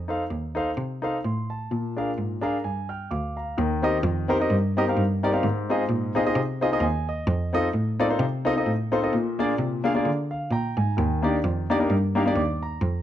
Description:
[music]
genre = uptempo gospel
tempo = 130 BPM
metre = 4/4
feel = swing 56% on 8ths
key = Eb major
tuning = A4 = 439 Hz
[part]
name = clear cello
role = bass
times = 0.0-13.0 s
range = D2 to D3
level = -26 LUFS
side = right 1 dB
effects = none
[part]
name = warm concert grand piano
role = accompaniment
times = 0.1-13.0 s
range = Ab2 to F6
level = -24 LUFS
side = left 1 dB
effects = none
[sound]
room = light reverb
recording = none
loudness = -22 LUFS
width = side -11 dB against mid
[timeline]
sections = 0.0-3.6 A section; 3.6-13.0 B section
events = grand piano fill 2.2-3.6, 10.3-11.0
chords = 0.0 F7; 1.7 Bb7; 3.6 Eb6; 5.4 Ab6; 7.3 F7; 9.1 Bb7; 11.0 Ebmaj7

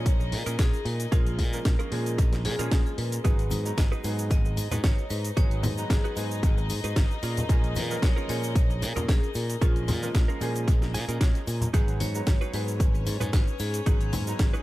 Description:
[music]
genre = nu-disco, nu disco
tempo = 113 BPM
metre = 4/4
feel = swing 54% on 16ths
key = G# dorian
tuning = A4 = 440 Hz
[part]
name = vibraphone with hard mallets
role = melody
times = 0.0-14.6 s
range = E#4 to D#5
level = -38 LUFS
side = left 3 dB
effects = dub echo
[part]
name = clear concert grand piano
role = accompaniment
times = 0.0-14.6 s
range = E#3 to A#5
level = -37 LUFS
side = right 2 dB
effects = sidechain pumping, tape echo
[part]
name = rich chamber string section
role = sustained chords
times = 0.0-14.6 s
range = C#4 to D#5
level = -40 LUFS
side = left 4 dB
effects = sidechain pumping
[part]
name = modern bright fingered electric bass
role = bass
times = 0.0-14.5 s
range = G#1 to A#2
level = -30 LUFS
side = equal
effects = none
[part]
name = direct-recorded clean electric guitar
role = riff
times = 0.1-14.6 s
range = C#4 to G#5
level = -38 LUFS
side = right 5 dB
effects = analog chorus, tape echo
[part]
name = electronic kick drum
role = drums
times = 0.1-14.5 s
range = none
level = -23 LUFS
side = equal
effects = none
[part]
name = house drum kit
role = drums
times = 0.1-14.6 s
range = hi-hat, shaker, snare drum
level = -35 LUFS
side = equal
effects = tape echo
[part]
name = egg shaker and congas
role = percussion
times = 3.2-14.5 s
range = none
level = -34 LUFS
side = left 1 dB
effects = none
[sound]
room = small room ambience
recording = echo-heavy mix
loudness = -23 LUFS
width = side -17 dB against mid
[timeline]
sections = 0.0-14.6 A section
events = clean electric guitar fill 10.7-11.7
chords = 0.0 A#m7; 3.2 G#m7; 7.2 A#m7; 11.7 G#m7

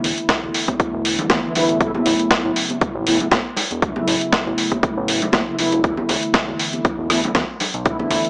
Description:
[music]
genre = nu-disco, nu disco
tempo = 119 BPM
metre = 4/4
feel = swing 55% on 16ths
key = unclear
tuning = A4 = 439 Hz
[part]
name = mellow synth brass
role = accompaniment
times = 0.0-8.3 s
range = C#3 to E4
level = -24 LUFS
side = equal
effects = chorus, sidechain pumping
[part]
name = fat analog bass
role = bass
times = 0.0-8.2 s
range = E1 to A2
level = -29 LUFS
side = equal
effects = tube saturation
[part]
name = dusty soul sampler-style drum kit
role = drums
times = 0.0-8.3 s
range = hi-hat, rim click, snare drum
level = -23 LUFS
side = equal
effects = overdrive
[part]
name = electronic kick drum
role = drums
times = 0.3-8.0 s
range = none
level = -24 LUFS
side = equal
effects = overdrive
[part]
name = congas and bongos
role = percussion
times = 0.7-8.2 s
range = none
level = -30 LUFS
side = equal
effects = none
[sound]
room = light reverb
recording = small speaker sound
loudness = -19 LUFS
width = mono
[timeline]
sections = 0.0-8.3 A section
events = none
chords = 0.0 E7sus4; 1.8 A69; 5.8 E7sus4

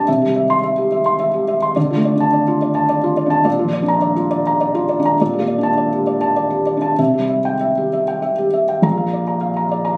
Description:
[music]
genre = neoclassical minimalist piano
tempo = 95-108 BPM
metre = 3/4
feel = rubato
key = unclear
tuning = A4 = 441 Hz
[part]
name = felt-muted upright piano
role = solo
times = 0.0-10.0 s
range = Bb1 to C6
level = -17 LUFS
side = equal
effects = none
[sound]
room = little or no reverb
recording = recorded on a phone in the room, club reverb, compression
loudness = -17 LUFS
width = mono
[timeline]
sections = 0.0-8.8 A section; 8.8-10.0 B section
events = none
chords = 0.1 C; 1.8 Dm; 3.5 Bb; 5.2 Gmadd9/Bb; 7.0 C; 8.8 Bb

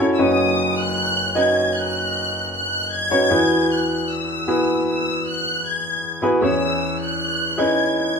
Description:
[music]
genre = pop ballad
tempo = 77 BPM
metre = 4/4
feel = straight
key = unclear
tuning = A4 = 440 Hz
[part]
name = warm baby grand piano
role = accompaniment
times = 0.0-8.2 s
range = F#1 to D#5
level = -20 LUFS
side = equal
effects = none
[part]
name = warm studio violin section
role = melody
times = 0.1-8.2 s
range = D#6 to G#6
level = -22 LUFS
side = left 2 dB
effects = none
[sound]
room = wet large studio reverb, RT60 1.0 s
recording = band playing live in one room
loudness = -18 LUFS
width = side -5 dB against mid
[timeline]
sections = 0.0-8.2 A section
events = none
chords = 0.2 Badd9/F#; 3.3 Eadd9; 6.4 C#m7/E

